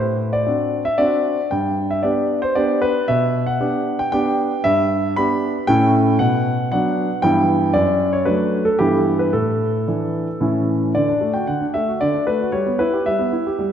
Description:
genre	classical-period piano sonatina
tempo	114 BPM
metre	3/4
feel	straight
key	G major, D major from 4.6 s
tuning	A4 = 440 Hz
part	clear concert grand piano	solo	0.0-13.7 s	F#2 to B5	-16 LUFS	equal	none
room	wet scoring stage reverb, RT60 1.8 s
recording	dark, warm production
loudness	-16 LUFS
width	side -9 dB against mid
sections	0.0-11.0 A section; 11.0-13.7 B section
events	none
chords	0.0 D7/A; 1.5 G; 3.1 G/B; 4.6 Em7/G; 5.7 A; 6.2 Bm; 7.2 Em/G; 7.7 D/F#; 8.8 Em/G; 9.3 Asus4; 10.4 A; 11.0 D; 12.5 Em/G

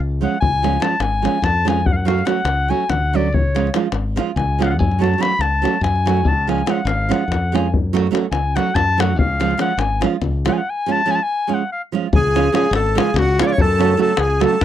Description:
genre	balkan folk, Balkan wedding band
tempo	287 BPM (eighths)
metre	7/8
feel	straight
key	unclear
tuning	A4 = 440 Hz
part	modern bright fingered electric bass	bass	0.0-14.6 s	G#1 to F#2	-20 LUFS	left 1 dB	none
part	bright clarinet	melody	0.2-14.6 s	F#4 to B5	-20 LUFS	left 3 dB	none
part	nylon-string guitar	accompaniment	0.2-14.6 s	C#3 to F#4	-19 LUFS	right 9 dB	none
part	davul	percussion	0.4-14.6 s	none	-22 LUFS	left 4 dB	none
part	accordion	second line	12.1-14.6 s	F#5 to D6	-26 LUFS	right 3 dB	light tremolo tuning
room	little or no reverb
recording	dry, close 1970s-style studio recording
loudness	-15 LUFS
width	side -11 dB against mid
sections	0.0-12.1 A section; 12.1-14.6 B section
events	clarinet solo 0.0-12.1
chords	0.0 C#; 1.9 F#m; 3.3 C#; 4.8 F#m; 6.3 C#; 7.7 F#m; 9.2 C#; 13.6 F#m

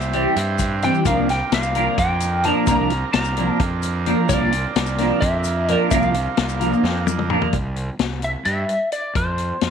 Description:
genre	psychedelic rock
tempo	259 BPM (eighths)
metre	7/8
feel	straight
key	unclear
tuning	A4 = 440 Hz
part	lightly driven lead guitar	melody	0.0-9.7 s	C5 to Bb5	-23 LUFS	left 1 dB	wah, slapback echo
part	overdriven combo organ	sustained chords	0.0-7.5 s	C4 to C5	-28 LUFS	right 13 dB	none
part	fuzz fingered electric bass	bass	0.0-9.7 s	C2 to G2	-24 LUFS	right 1 dB	overdrive
part	maracas	percussion	0.0-7.2 s	none	-36 LUFS	left 18 dB	none
part	clean electric guitar	riff	0.1-7.5 s	E3 to Bb4	-20 LUFS	right 1 dB	phaser, double-tracked left and right
part	vintage drum kit	drums	0.1-9.7 s	hi-hat, kick drum, snare drum, toms	-24 LUFS	left 4 dB	none
room	light reverb, small room ambience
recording	1960s-style stereo with parts hard left and right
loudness	-18 LUFS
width	side -7 dB against mid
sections	0.0-7.5 A section; 7.5-9.7 B section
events	drum fill 6.8-7.5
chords	0.0 C; 1.1 Bbadd9/C; 7.5 C; 9.2 F5

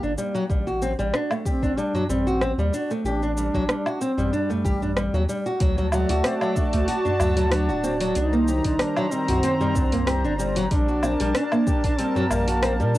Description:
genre	organic downtempo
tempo	94 BPM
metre	4/4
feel	swing 54% on 16ths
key	unclear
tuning	A4 = 444 Hz
part	mellow duduk	melody	0.0-12.9 s	G3 to F#4	-27 LUFS	equal	cassette tape, analog delay
part	nylon-string guitar	arpeggios	0.0-13.0 s	F#3 to G4	-25 LUFS	equal	cassette tape, analog delay
part	round analog bass	bass	0.0-13.0 s	D1 to Bb2	-26 LUFS	equal	sidechain pumping
part	deep house drum kit	drums	0.0-13.0 s	hi-hat, rim click, shaker, woodblock	-28 LUFS	equal	overdrive, cassette tape
part	electronic kick drum	drums	0.5-12.0 s	none	-24 LUFS	equal	cassette tape
part	darbuka	percussion	1.6-13.0 s	none	-32 LUFS	left 1 dB	none
part	warm analog pad	sustained chords	5.6-13.0 s	Eb3 to Bb5	-28 LUFS	right 1 dB	chorus, sidechain pumping, cassette tape, plate reverb
room	moderate booth ambience, RT60 0.2 s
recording	home recording on cassette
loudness	-20 LUFS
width	side -16 dB against mid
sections	0.0-5.6 A section; 5.6-13.0 B section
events	none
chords	0.5 Am7; 5.6 D; 8.2 Cm7; 10.7 Gmadd9/Bb

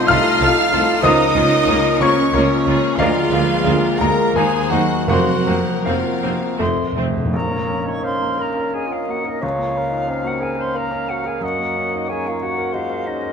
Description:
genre	classical, romantic movement for piano and orchestra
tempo	78-96 BPM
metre	3/4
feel	rubato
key	Bb minor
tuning	A4 = 439 Hz
part	clear baby grand piano	melody	0.0-13.3 s	Bb1 to F6	-20 LUFS	left 2 dB	none
part	rich symphonic violin section	melody	0.0-6.9 s	Ab4 to F5	-27 LUFS	left 6 dB	none
part	clear studio violin section	second line	0.0-6.6 s	Db5 to F6	-26 LUFS	left 2 dB	none
part	mellow cor anglais	second line	0.0-13.3 s	Db4 to F5	-25 LUFS	right 3 dB	none
part	warm clarinet	second line	0.0-13.3 s	Db4 to F5	-27 LUFS	left 2 dB	none
part	dark French horn section	sustained chords	0.0-7.0 s	A3 to Bb4	-25 LUFS	left 6 dB	none
part	rich symphonic cello section	bass	0.0-6.6 s	Db3 to F4	-24 LUFS	right 5 dB	none
part	clear symphonic viola section	accompaniment	0.1-7.1 s	A3 to F4	-27 LUFS	right 2 dB	none
part	mellow tuba	bass	0.1-7.1 s	F1 to Eb2	-27 LUFS	right 6 dB	none
part	rich symphonic double bass section	bass	0.1-7.1 s	C2 to F2	-26 LUFS	right 4 dB	none
part	mellow bassoon	accompaniment	1.0-13.3 s	F3 to Db4	-27 LUFS	right 3 dB	none
part	concert flute	second line	1.1-13.3 s	Eb5 to Db6	-26 LUFS	left 1 dB	none
part	timpani	percussion	5.1-7.3 s	F2	-27 LUFS	equal	none
room	moderate concert hall reverb, RT60 1.9 s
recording	none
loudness	-16 LUFS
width	side -6 dB against mid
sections	0.0-7.3 A section; 7.3-13.3 B section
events	timpani fill 6.6-7.3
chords	0.0 F7/C; 1.0 Bbm/Db; 3.0 Bb7/D; 4.4 Ebm; 5.1 Fsus4; 6.6 F; 7.3 Bbm; 9.4 Bbm/Db; 11.4 Gb

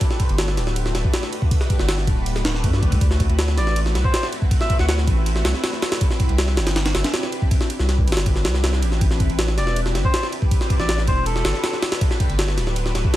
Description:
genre	drum and bass, jungle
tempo	160 BPM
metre	4/4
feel	straight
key	unclear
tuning	A4 = 441 Hz
part	lush unison pad	sustained chords	0.0-13.2 s	A3 to B4	-29 LUFS	equal	chorus, phaser
part	jungle sampler-style drum kit	drums	0.0-13.2 s	kick drum, ride cymbal, snare drum	-20 LUFS	equal	none
part	saturated sub bass	bass	0.3-13.0 s	D1 to G2	-21 LUFS	equal	none
part	melodica	melody	3.6-4.9, 9.6-11.8 s	A4 to F#5	-29 LUFS	equal	vintage 12-bit sampler grit, dub echo
room	digital ambience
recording	none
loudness	-18 LUFS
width	side -14 dB against mid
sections	0.0-13.2 A section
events	none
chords	0.0 Gmaj9; 3.0 D13; 6.0 Cmaj9; 9.0 Am11; 12.0 Gmaj9

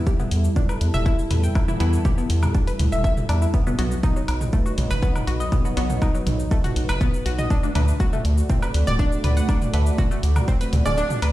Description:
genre	melodic techno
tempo	121 BPM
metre	4/4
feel	straight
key	E minor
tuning	A4 = 440 Hz
part	dark analog pad	sustained chords	0.0-11.3 s	F#3 to D5	-30 LUFS	right 1 dB	chorus, sidechain pumping
part	analog pluck	arpeggios	0.1-11.3 s	F#3 to G5	-28 LUFS	left 1 dB	chorus, sidechain pumping, ping-pong delay
part	electronic kick drum	drums	0.1-10.6 s	none	-20 LUFS	equal	none
part	house drum kit	drums	0.1-11.3 s	hi-hat, shaker, toms, woodblock	-28 LUFS	equal	sidechain pumping on perc, sidechain pumping on toms, sidechain pumping on hats
part	gritty driven synth bass	bass	0.3-11.3 s	D1 to E2	-21 LUFS	equal	sidechain pumping
part	filtered dub chord stab	stabs	1.7-11.3 s	B2 to E4	-30 LUFS	left 1 dB	phaser, wide subtle chorus, sidechain pumping, ping-pong delay
room	light reverb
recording	played on a big sound system in a bare room, stone room reverb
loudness	-19 LUFS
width	side -15 dB against mid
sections	0.0-11.3 A section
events	kick drops out 11.0-11.3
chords	0.0 Em; 3.5 B; 7.5 D

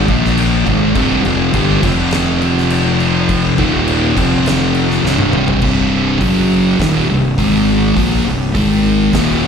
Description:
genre	stoner and doom metal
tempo	103 BPM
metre	4/4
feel	straight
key	C minor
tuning	A4 = 440 Hz
part	thick fuzz guitar	riff	0.0-9.5 s	C2 to Bb3	-13 LUFS	equal	distortion, slapback echo
part	fuzz fingered electric bass	bass	0.0-9.5 s	C1 to Bb1	-19 LUFS	equal	overdrive
part	oversized low-tuned drum kit	drums	0.1-9.3 s	crash cymbal, hi-hat, kick drum, snare drum, toms	-20 LUFS	equal	none
room	little or no reverb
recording	live gig heard through the venue's PA, recital hall reverb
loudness	-11 LUFS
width	side -6 dB against mid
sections	0.0-5.6 A section; 5.6-9.5 B section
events	drum fill 5.0-5.6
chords	0.1 Bb5; 0.7 Ab5; 1.0 C5; 1.8 F5; 3.6 Eb5; 4.2 F5; 5.0 C5; 6.2 F#5; 6.8 Cm; 7.4 Ab5; 8.0 C5; 8.5 Ab5

